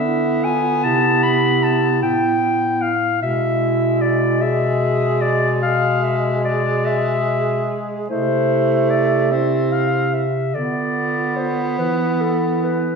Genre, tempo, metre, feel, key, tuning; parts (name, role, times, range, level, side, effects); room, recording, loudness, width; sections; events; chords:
classical, lyrical piece for single-reed quartet; 49 BPM (dotted quarters); 12/8; rubato; A minor; A4 = 441 Hz
clear clarinet; melody; 0.0-13.0 s; A4 to B5; -21 LUFS; left 5 dB
clear alto saxophone; second line; 0.0-13.0 s; E4 to G#4; -23 LUFS; right 4 dB
clear tenor saxophone; accompaniment; 0.0-13.0 s; G#3 to C4; -23 LUFS; right 2 dB
warm bass clarinet; bass; 0.0-13.0 s; A2 to E3; -22 LUFS; right 1 dB
wet recital hall reverb, RT60 1.3 s; heard from further back in the room; -16 LUFS; side -5 dB against mid
0.0-13.0 A section
0.0 E5/D; 0.8 Am/C; 3.2 E/B; 8.1 Am/C; 10.5 Bdim/D; 11.8 E5